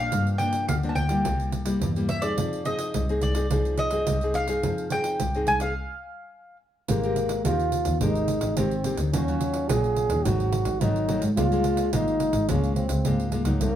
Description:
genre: samba and choro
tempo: 107 BPM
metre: 4/4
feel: straight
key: F dorian, Ab major from 6.9 s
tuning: A4 = 444 Hz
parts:
  - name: mandolin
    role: melody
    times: 0.0-6.6 s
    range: D5 to A5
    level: -28 LUFS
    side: equal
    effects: plate reverb
  - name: nylon-string guitar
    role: accompaniment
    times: 0.0-13.8 s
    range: G2 to Bb4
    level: -28 LUFS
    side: left 2 dB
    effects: none
  - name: warm double bass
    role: bass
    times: 0.0-13.8 s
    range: Ab1 to Ab2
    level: -27 LUFS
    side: equal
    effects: none
  - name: pandeiro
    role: percussion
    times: 0.1-13.7 s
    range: none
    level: -31 LUFS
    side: right 3 dB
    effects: none
  - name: warm trombone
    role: second line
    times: 6.9-13.8 s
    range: Bb3 to Ab4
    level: -26 LUFS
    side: right 1 dB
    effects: none
room: wet studio ambience, RT60 0.5 s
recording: heard from further back in the room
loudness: -22 LUFS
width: side -10 dB against mid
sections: 0.0-6.9 A section; 6.9-13.8 B section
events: stop 5.8-6.9; trombone solo 6.9-13.8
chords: 0.1 Gm7; 1.2 C7; 2.4 Fm7; 6.9 Abmaj9; 9.1 Ebm9; 10.3 Ab7b9; 11.4 Db6

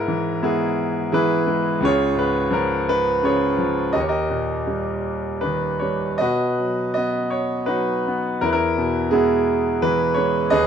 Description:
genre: classical, lyrical solo piano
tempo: 78-88 BPM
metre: 3/4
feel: rubato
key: unclear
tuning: A4 = 442 Hz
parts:
  - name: bright concert grand piano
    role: solo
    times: 0.0-10.7 s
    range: C#2 to D#5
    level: -18 LUFS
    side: equal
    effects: none
room: moderate plate reverb, RT60 2.3 s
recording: nothing above 11.0 kHz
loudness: -19 LUFS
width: side -8 dB against mid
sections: 0.0-10.7 A section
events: none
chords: 0.0 E/G#; 1.8 C#; 3.9 D#; 6.2 B; 8.4 E

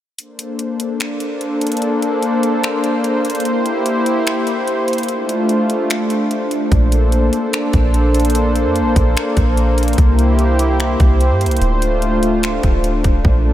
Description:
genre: hip hop, atmospheric cloud-rap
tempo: 147 BPM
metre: 4/4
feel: half-time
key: Bb lydian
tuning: A4 = 438 Hz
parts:
  - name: warm analog pad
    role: sustained chords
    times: 0.4-13.5 s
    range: A3 to C5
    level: -16 LUFS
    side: equal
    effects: chorus, sidechain pumping
  - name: trap drum kit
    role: drums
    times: 0.2-13.3 s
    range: finger snaps, hi-hat, kick drum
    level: -20 LUFS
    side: equal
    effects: none
  - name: soft 808-style bass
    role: bass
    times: 6.7-13.5 s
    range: D1 to G2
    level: -15 LUFS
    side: equal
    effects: none
  - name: backwards swelling texture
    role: texture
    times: 13.4-13.5 s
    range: A4 to C6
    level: -44 LUFS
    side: left 2 dB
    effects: none
room: moderate huge ambient reverb, RT60 8.6 s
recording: dreamy mix soaked in reverb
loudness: -14 LUFS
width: side -12 dB against mid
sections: 0.2-13.5 A section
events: kick muted 0.2-6.7; hi-hats muted 13.2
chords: 0.2 Bbmaj9; 3.5 C7; 5.1 Dm7; 6.7 Bbmaj9; 10.0 C7; 11.6 Dm7

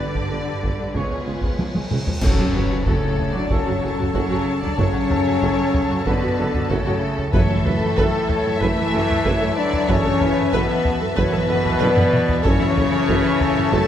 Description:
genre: cinematic, epic orchestral film score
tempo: 94 BPM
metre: 4/4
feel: straight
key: F# minor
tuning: A4 = 441 Hz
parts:
  - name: rich symphonic violin section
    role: melody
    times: 0.0-13.9 s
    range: A4 to A5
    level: -29 LUFS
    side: left 2 dB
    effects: none
  - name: warm symphonic violin section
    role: second line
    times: 0.0-13.9 s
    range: G#4 to A5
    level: -31 LUFS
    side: left 3 dB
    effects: none
  - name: warm symphonic viola section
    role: accompaniment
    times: 0.0-13.8 s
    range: C#3 to B4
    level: -30 LUFS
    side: right 1 dB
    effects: none
  - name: mellow French horn section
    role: sustained chords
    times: 0.0-13.9 s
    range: A3 to A4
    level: -23 LUFS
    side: left 4 dB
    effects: none
  - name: mellow tuba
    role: bass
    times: 0.0-13.8 s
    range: F#1 to C#2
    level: -29 LUFS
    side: right 3 dB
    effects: none
  - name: warm symphonic cello section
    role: bass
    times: 0.0-13.9 s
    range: B2 to C#4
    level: -27 LUFS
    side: right 2 dB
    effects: none
  - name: warm symphonic double bass section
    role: bass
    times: 0.0-13.8 s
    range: C#2 to G2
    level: -27 LUFS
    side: right 3 dB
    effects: none
  - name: cymbal swell and impact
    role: sound effects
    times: 1.8-4.8 s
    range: none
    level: -33 LUFS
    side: equal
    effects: none
  - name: taiko ensemble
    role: drums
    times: 0.2-13.9 s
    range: none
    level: -24 LUFS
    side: equal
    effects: none
  - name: bright trombone section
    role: sustained chords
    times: 0.9-13.9 s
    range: A2 to A3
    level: -29 LUFS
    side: right 3 dB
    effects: none
  - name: mellow trumpet section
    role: stabs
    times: 1.0-1.2 s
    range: C#5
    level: -35 LUFS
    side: right 1 dB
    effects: none
  - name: silver concert flute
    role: second line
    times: 2.2-13.9 s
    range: A4 to D5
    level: -29 LUFS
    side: left 1 dB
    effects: none
  - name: clash cymbals and concert bass drum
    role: percussion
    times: 2.2-3.5 s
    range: none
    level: -28 LUFS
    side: equal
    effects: none
  - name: timpani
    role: percussion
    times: 7.3-8.2, 12.4-13.4 s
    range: F#2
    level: -28 LUFS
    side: right 1 dB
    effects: none
room: moderate scoring stage reverb, RT60 1.7 s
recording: none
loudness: -17 LUFS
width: side -10 dB against mid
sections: 0.0-2.2 A section; 2.2-13.9 B section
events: drum fill 1.6-2.2, 11.8-12.4; cymbal swell 1.8-2.2; band accent 2.2-2.9; impact 2.2-4.8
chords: 0.0 G; 0.9 C#7; 2.2 F#m; 7.3 Esus4/F#; 12.4 A/F#

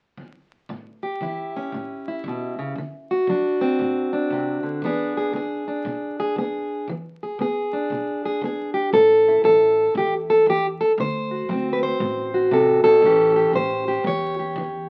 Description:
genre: acoustic country blues, solo or duo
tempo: 117 BPM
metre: 4/4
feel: swing 62% on 8ths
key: unclear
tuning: A4 = 440 Hz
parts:
  - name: kick drum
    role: drums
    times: 0.2-14.7 s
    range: none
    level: -43 LUFS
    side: equal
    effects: none
  - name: fingerpicked plugged-in steel-string acoustic guitar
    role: melody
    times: 0.7-14.9 s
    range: A2 to C#5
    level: -22 LUFS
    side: equal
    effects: none
  - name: upright bass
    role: bass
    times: 8.9-14.9 s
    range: A1 to E2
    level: -36 LUFS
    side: equal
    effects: none
room: moderate studio reverb, RT60 0.6 s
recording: very old 78 rpm record, vinyl crackle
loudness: -21 LUFS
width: mono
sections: 0.7-8.9 A section; 8.9-14.9 B section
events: none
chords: 0.0 N.C.; 0.7 A7; 2.8 D7; 4.8 E7; 8.9 A5; 11.0 D7; 13.0 A7

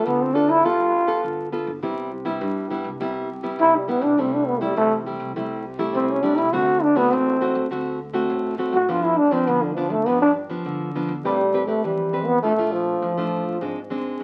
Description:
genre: samba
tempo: 102 BPM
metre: 4/4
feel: straight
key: unclear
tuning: A4 = 438 Hz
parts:
  - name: growling trombone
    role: second line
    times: 0.0-13.9 s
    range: D3 to F#4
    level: -21 LUFS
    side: equal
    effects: none
  - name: nylon-string guitar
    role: accompaniment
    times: 0.0-14.2 s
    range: G2 to B4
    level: -28 LUFS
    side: equal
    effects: none
  - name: upright bass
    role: bass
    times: 0.0-14.2 s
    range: G1 to G2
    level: -40 LUFS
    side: equal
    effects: none
room: wet small room reverb, RT60 0.5 s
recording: very old 78 rpm record, vinyl crackle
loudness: -22 LUFS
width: mono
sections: 0.0-11.2 A section; 11.2-14.2 B section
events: trombone solo 0.0-11.2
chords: 0.0 G9; 1.8 Cmaj7; 4.2 Am7/C; 6.5 D7; 8.9 G7; 11.2 Am9; 12.4 Bbmaj7; 13.6 G#(b5, no3)

